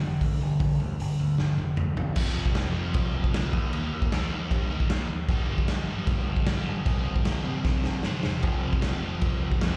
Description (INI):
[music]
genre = punk rock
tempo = 153 BPM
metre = 4/4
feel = straight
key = unclear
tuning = A4 = 439 Hz
[part]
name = sludgy distorted guitar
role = riff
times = 0.0-9.8 s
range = F2 to Eb4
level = -32 LUFS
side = equal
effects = overdrive
[part]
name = growling picked electric bass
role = bass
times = 0.0-9.8 s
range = E1 to G2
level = -34 LUFS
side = equal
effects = overdrive
[part]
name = raw garage drum kit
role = drums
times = 0.2-9.7 s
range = crash cymbal, hi-hat, kick drum, snare drum, toms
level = -30 LUFS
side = equal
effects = none
[sound]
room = little or no reverb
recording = live gig heard through the venue's PA, club reverb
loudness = -27 LUFS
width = mono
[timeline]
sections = 0.0-2.2 A section; 2.2-9.8 B section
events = half time 0.0-2.2; drum fill 1.4-2.2, 7.7-8.4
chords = 0.0 G5; 2.2 F5; 3.5 Eb5; 5.3 G5; 6.9 C5/G; 8.4 F5